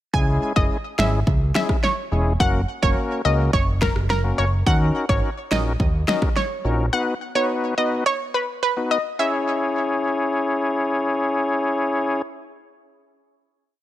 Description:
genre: dancehall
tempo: 106 BPM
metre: 4/4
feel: straight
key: C# dorian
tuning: A4 = 439 Hz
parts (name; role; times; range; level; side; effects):
- analog pluck; melody; 0.1-10.9 s; A#4 to G#5; -24 LUFS; equal; chorus, digital delay
- bright tonewheel organ; accompaniment; 0.1-12.2 s; G#3 to C#5; -23 LUFS; left 2 dB; overdrive, chorus vibrato
- fat analog bass; bass; 0.1-6.9 s; E1 to D#2; -21 LUFS; equal; none
- pop drum kit; drums; 0.1-6.5 s; finger snaps, kick drum, rim click, snare drum; -22 LUFS; equal; overdrive
room: light reverb, digital ambience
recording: none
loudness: -19 LUFS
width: side -13 dB against mid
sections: 0.1-9.2 verse; 9.2-11.5 final chord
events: none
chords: 0.1 C#m; 2.4 F#; 4.7 D#m7; 6.9 B; 9.2 C#m

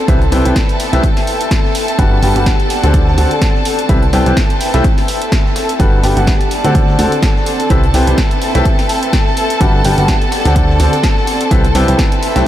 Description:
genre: piano house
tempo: 126 BPM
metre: 4/4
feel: swing 56% on 16ths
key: unclear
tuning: A4 = 441 Hz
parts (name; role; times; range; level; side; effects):
- rich chamber violin section; sustained chords; 0.0-12.5 s; A4 to A5; -20 LUFS; left 1 dB; sidechain pumping
- airy breathy pad; texture; 0.0-12.5 s; B3 to G5; -20 LUFS; equal; chorus, sidechain pumping
- bright baby grand piano; riff; 0.1-12.4 s; C3 to A5; -17 LUFS; equal; sidechain pumping, analog delay
- plucky analog bass; bass; 0.1-12.4 s; G1 to D2; -14 LUFS; equal; sidechain pumping
- breakbeat sampler-style drum kit; drums; 0.1-12.5 s; hi-hat, snare drum; -33 LUFS; equal; none
- electronic kick drum; drums; 0.1-12.1 s; none; -14 LUFS; equal; none
- punchy analog drum machine; drums; 0.1-12.4 s; hi-hat, snare drum; -23 LUFS; equal; none
room: moderate huge ambient reverb, RT60 5.1 s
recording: dreamy mix soaked in reverb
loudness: -10 LUFS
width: side -12 dB against mid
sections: 0.0-12.5 A section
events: none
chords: 0.0 Cmaj7; 1.0 Am7; 2.0 Gmaj7; 2.7 D7; 3.7 Cmaj7; 4.8 Am7; 5.8 Gmaj7; 6.5 D7; 7.5 Cmaj7; 8.7 Am7; 9.6 Gmaj7; 10.3 D7; 11.3 Cmaj7

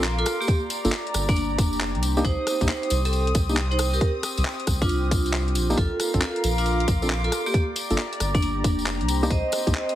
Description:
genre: UK garage, two-step garage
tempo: 136 BPM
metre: 4/4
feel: swing 65% on 16ths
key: C dorian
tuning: A4 = 441 Hz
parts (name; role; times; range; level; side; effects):
- mellow tine electric piano; stabs; 0.0-9.7 s; Bb3 to A4; -28 LUFS; equal; medium tremolo, tape echo
- soft dub sub bass; bass; 0.0-9.7 s; F1 to C2; -25 LUFS; equal; none
- garage drum kit; drums; 0.0-10.0 s; handclaps, hi-hat, rim click; -31 LUFS; left 1 dB; none
- tambourine; percussion; 0.0-9.9 s; none; -34 LUFS; left 2 dB; none
- dark studio string section; texture; 0.0-10.0 s; C4 to Eb6; -32 LUFS; left 2 dB; sidechain pumping
- vibraphone with hard mallets; melody; 0.2-10.0 s; Bb3 to Eb5; -28 LUFS; right 1 dB; tape echo
- electronic kick drum; drums; 0.5-9.7 s; none; -24 LUFS; equal; none
room: light reverb, digital ambience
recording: heavily compressed radio sound, multiband compression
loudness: -21 LUFS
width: side -12 dB against mid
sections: 0.0-10.0 A section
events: none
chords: 0.3 Gm7; 2.0 Cm7; 5.8 Bbmaj7; 7.3 Gm7; 9.1 Cm7

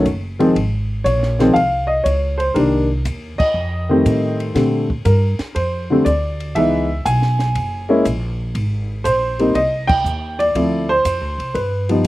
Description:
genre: jazz piano trio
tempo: 120 BPM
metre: 4/4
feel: swing 69% on 8ths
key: unclear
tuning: A4 = 441 Hz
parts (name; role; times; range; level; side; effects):
- warm baby grand piano; melody; 0.0-12.1 s; D3 to Ab5; -16 LUFS; equal; none
- upright bass; bass; 0.0-12.1 s; F#1 to Bb2; -21 LUFS; equal; none
- compact cocktail drum kit; drums; 0.1-12.1 s; crash cymbal, hi-hat, kick drum, ride cymbal, snare drum; -28 LUFS; equal; none
room: little or no reverb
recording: recorded outdoors, with no room sound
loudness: -15 LUFS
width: side -17 dB against mid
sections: 0.0-12.1 A section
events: band accent 3.3, 9.8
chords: 0.0 B (rootless); 0.6 Dbmaj7; 2.6 Cm7; 3.6 F9; 4.6 Bbmaj13; 6.6 Dbm7; 7.6 F#add9; 8.6 Abmaj9; 10.6 Dm9; 11.6 Gaug7

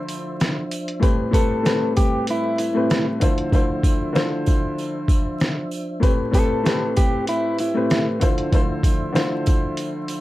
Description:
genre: hip hop, boom-bap hip-hop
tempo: 96 BPM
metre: 4/4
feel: swing 55% on 16ths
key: unclear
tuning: A4 = 445 Hz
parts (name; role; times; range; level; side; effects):
- warm baby grand piano; accompaniment; 0.0-10.2 s; A2 to C5; -23 LUFS; left 2 dB; cassette tape, high-pass filter, low-pass filter, plate reverb
- percussive tonewheel organ; sustained chords; 0.0-10.2 s; F3 to E5; -30 LUFS; right 1 dB; chorus vibrato, slow rotary speaker, high-pass filter, low-pass filter, plate reverb
- trip hop sampler-style drum kit; drums; 0.1-10.2 s; hi-hat, kick drum, rim click, snare drum; -20 LUFS; equal; vintage 12-bit sampler grit
- sleigh bells; percussion; 0.1-10.2 s; none; -39 LUFS; right 7 dB; none
- electric guitar at the edge of break-up; melody; 1.3-8.1 s; E4 to A4; -24 LUFS; equal; high-pass filter, low-pass filter, plate reverb, ping-pong delay
room: light reverb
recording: vinyl crackle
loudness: -18 LUFS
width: side -16 dB against mid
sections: 0.0-10.2 A section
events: hi-hats muted 3.5-6.0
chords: 0.0 Dm9; 1.0 Am9; 3.2 Dm9; 6.0 Am9; 8.2 Dm9

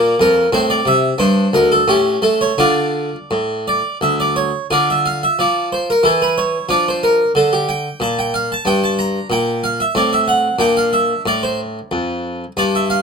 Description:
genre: classical, baroque-style suite movement for harpsichord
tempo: 91 BPM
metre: 3/4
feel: rubato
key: D minor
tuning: A4 = 440 Hz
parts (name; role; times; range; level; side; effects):
- harpsichord; solo; 0.0-13.0 s; D2 to Bb5; -14 LUFS; equal; none
room: moderate small room reverb, RT60 0.6 s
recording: none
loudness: -14 LUFS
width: side -5 dB against mid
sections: 0.0-4.7 A section; 4.7-13.0 A section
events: none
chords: 0.0 Bb; 0.5 Amadd11; 1.2 G5; 1.9 A7; 2.6 Dm; 6.0 N.C.; 6.7 Dm; 8.6 Gm; 10.0 F#dim/A; 10.6 Fmaj13

